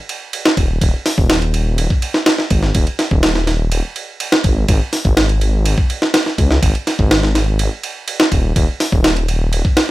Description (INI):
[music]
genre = breakbeat, breaks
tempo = 124 BPM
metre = 4/4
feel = straight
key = unclear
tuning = A4 = 441 Hz
[part]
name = breakbeat sampler-style drum kit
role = drums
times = 0.1-9.9 s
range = hi-hat, kick drum, ride cymbal, snare drum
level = -15 LUFS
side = equal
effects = none
[part]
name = detuned saw bass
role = bass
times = 0.6-9.6 s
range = D#1 to C#2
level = -16 LUFS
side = equal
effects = none
[sound]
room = little or no reverb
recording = none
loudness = -13 LUFS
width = side -17 dB against mid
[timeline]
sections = 0.0-9.9 A section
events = none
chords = none